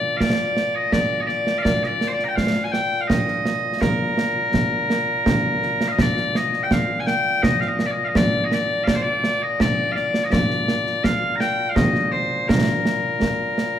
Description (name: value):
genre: scottish traditional, Scottish pipe music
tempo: 83 BPM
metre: 3/4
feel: straight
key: Bb major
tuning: A4 = 440 Hz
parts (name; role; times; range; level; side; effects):
- loud bright bagpipes; melody; 0.0-13.8 s; Bb2 to Bb5; -21 LUFS; left 1 dB; none
- concert snare drum and concert bass drum; drums; 0.2-13.7 s; none; -22 LUFS; right 1 dB; none
room: moderate recital hall reverb, RT60 1.5 s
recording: recorded in a church or concert hall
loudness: -18 LUFS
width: side -10 dB against mid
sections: 0.0-6.0 A section; 6.0-13.8 A section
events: none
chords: none